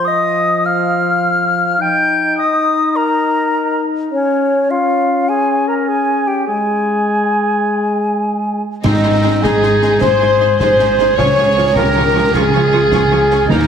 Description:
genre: cinematic, heroic adventure film score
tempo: 103 BPM (dotted quarters)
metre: 12/8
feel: straight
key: Ab major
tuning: A4 = 440 Hz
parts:
  - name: mellow hollow silver concert flute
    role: second line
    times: 0.0-13.7 s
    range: Db5 to G6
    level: -18 LUFS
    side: equal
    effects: none
  - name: warm clarinet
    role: second line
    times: 0.0-13.7 s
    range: Db4 to G5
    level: -20 LUFS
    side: left 1 dB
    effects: none
  - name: clear French horn section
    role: sustained chords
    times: 0.0-13.7 s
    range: F3 to Db5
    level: -16 LUFS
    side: left 2 dB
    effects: none
  - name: warm symphonic violin section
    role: melody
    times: 8.8-13.7 s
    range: Eb4 to Db5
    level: -22 LUFS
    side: left 2 dB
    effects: none
  - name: warm cor anglais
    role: second line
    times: 8.8-13.7 s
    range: Bb3 to Ab4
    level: -23 LUFS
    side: right 3 dB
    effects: none
  - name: warm symphonic violin section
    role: second line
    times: 8.8-13.6 s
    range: G5 to Db6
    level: -27 LUFS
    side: equal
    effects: none
  - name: warm studio viola section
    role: accompaniment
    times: 8.8-13.6 s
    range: F3 to F4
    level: -23 LUFS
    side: right 3 dB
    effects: none
  - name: rich symphonic cello section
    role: bass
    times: 8.8-13.7 s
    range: Db2 to Ab2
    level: -21 LUFS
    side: right 3 dB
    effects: none
  - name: concert snare drum, clash cymbals and concert bass drum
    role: drums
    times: 8.8-13.7 s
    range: none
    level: -22 LUFS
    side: right 2 dB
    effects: none
  - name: timpani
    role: percussion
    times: 8.8-9.4, 13.5-13.7 s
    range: Ab2 to Eb3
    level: -20 LUFS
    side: equal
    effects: none
  - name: dark symphonic double bass section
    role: bass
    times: 8.9-13.7 s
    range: Ab1 to Eb2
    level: -20 LUFS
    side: right 4 dB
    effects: none
room: wet scoring stage reverb, RT60 1.7 s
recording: heavily compressed radio sound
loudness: -12 LUFS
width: side -7 dB against mid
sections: 0.0-8.9 A section; 8.9-13.7 A section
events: none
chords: 0.0 N.C.; 8.9 Ab; 11.2 Db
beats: 0.07 0.65 1.23 | 1.80 2.38 2.96 3.54 | 4.12 4.71 5.29 5.88 | 6.47 7.07 7.67 8.26 | 8.85 9.44 10.02 10.60 | 11.18 11.76 12.34 12.92 | 13.50

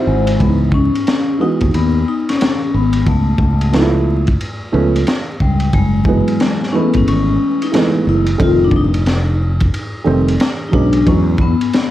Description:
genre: hip hop, jazz-hop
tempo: 90 BPM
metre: 4/4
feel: swing 64% on 16ths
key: C# minor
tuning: A4 = 440 Hz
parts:
  - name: vibraphone with soft mallets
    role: melody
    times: 0.0-11.9 s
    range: G3 to B#4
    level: -17 LUFS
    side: left 4 dB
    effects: analog delay
  - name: dark upright piano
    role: accompaniment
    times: 0.0-11.3 s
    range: Eb3 to F#4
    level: -17 LUFS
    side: right 3 dB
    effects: plate reverb
  - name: fretless electric bass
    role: bass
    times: 0.1-11.5 s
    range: F1 to E2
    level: -16 LUFS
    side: equal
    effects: none
  - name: crunchy breakbeat drum kit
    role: drums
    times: 0.3-11.9 s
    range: hi-hat, kick drum, ride cymbal, snare drum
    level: -18 LUFS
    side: equal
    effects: none
room: moderate studio reverb, RT60 0.5 s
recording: dark, warm production, vinyl crackle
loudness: -12 LUFS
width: side -13 dB against mid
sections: 0.4-11.9 A section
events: break 0.0-0.4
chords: 0.4 C#m9; 3.1 C#7alt; 5.7 F#m11; 8.4 F9; 11.1 E6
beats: | 0.40 1.07 1.74 2.40 | 3.07 3.74 4.40 5.07 | 5.74 6.40 7.07 7.74 | 8.40 9.07 9.74 10.40 | 11.07 11.74

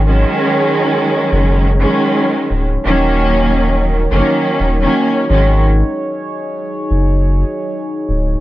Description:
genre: hip hop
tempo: 86 BPM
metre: 4/4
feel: swing 61% on 16ths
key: unclear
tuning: A4 = 439 Hz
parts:
  - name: muted studio string section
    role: accompaniment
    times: 0.0-5.6 s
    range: Eb3 to Db4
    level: -14 LUFS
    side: right 1 dB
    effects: high-pass filter, low-pass filter, plate reverb
  - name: dark analog pad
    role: sustained chords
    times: 0.0-8.4 s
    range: Gb3 to Db5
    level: -22 LUFS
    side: equal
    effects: chorus, phaser, high-pass filter, low-pass filter, plate reverb
  - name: warm sub bass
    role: bass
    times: 0.0-8.4 s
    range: D1 to Ab1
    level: -14 LUFS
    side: equal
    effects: none
room: light reverb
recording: dark, warm production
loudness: -12 LUFS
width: side -16 dB against mid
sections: 0.0-8.4 A section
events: break 5.6-8.4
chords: 0.0 Ab7sus4; 2.9 Ebm7; 5.3 Ab7sus4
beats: | 0.06 0.76 1.46 2.15 | 2.85 3.55 4.25 4.94 | 5.64 6.34 7.04 7.74

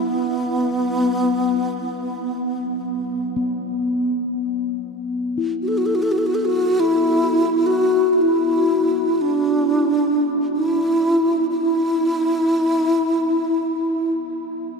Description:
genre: world meditative, free-time meditation music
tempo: free time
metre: none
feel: none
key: unclear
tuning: A4 = 439 Hz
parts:
  - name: breathy mellow wooden-headed alto flute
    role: melody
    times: 0.0-14.1 s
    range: B3 to A4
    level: -18 LUFS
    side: equal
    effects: tape echo
  - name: quartz singing bowl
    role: texture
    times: 0.0-14.6 s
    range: F#3 to E4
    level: -27 LUFS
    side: left 4 dB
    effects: none
room: wet huge ambient reverb, RT60 7.7 s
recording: in a vast, echoing space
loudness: -18 LUFS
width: side -4 dB against mid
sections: 0.0-4.7 A section; 4.7-14.8 A section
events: none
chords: none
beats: free time

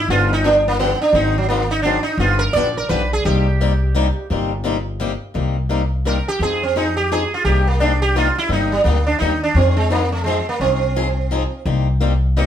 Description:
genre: acoustic string swing (jazz manouche)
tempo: 171 BPM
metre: 3/4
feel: swing 62% on 8ths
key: C minor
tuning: A4 = 440 Hz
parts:
  - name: sitar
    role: melody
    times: 0.0-12.5 s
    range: Gb3 to D5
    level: -18 LUFS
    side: right 3 dB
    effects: none
  - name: upright bass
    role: bass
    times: 0.0-12.5 s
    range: G1 to F2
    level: -19 LUFS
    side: left 1 dB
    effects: none
  - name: picked swing-style acoustic guitar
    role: accompaniment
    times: 0.1-12.5 s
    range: C3 to Ab4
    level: -23 LUFS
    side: left 5 dB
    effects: none
room: wet studio reverb, RT60 0.6 s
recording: band playing live in one room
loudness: -16 LUFS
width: side -10 dB against mid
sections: 0.0-5.3 A section; 5.3-12.5 A section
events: sitar solo 0.0-5.3, 5.3-12.5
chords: 0.1 G7; 1.1 Ab7; 2.2 G7#9; 3.2 Cm7; 6.4 Fm7; 7.4 Cm7; 9.6 Fm7; 11.7 Cm7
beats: | 0.10 0.45 0.80 | 1.15 1.50 1.85 | 2.20 2.55 2.90 | 3.25 3.60 3.95 | 4.30 4.65 5.00 | 5.35 5.70 6.05 | 6.40 6.75 7.10 | 7.45 7.80 8.15 | 8.50 8.85 9.20 | 9.55 9.90 10.25 | 10.60 10.95 11.30 | 11.65 12.00 12.35

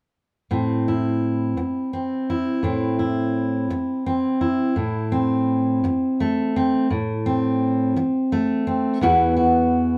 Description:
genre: folk, solo fingerstyle acoustic guitar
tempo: 56 BPM (dotted quarters)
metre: 6/8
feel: straight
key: A dorian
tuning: A4 = 440 Hz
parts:
  - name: fingerpicked steel-string acoustic guitar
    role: solo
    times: 0.5-10.0 s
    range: E2 to F#4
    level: -22 LUFS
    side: equal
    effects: none
room: wet studio ambience, RT60 0.5 s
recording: heard from further back in the room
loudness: -22 LUFS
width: mono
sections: 0.5-4.8 A section; 4.8-10.0 B section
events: none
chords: 0.5 Am; 9.0 Esus2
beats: | 0.51 1.58 | 2.64 3.70 | 4.77 5.84 | 6.91 7.97 | 9.02

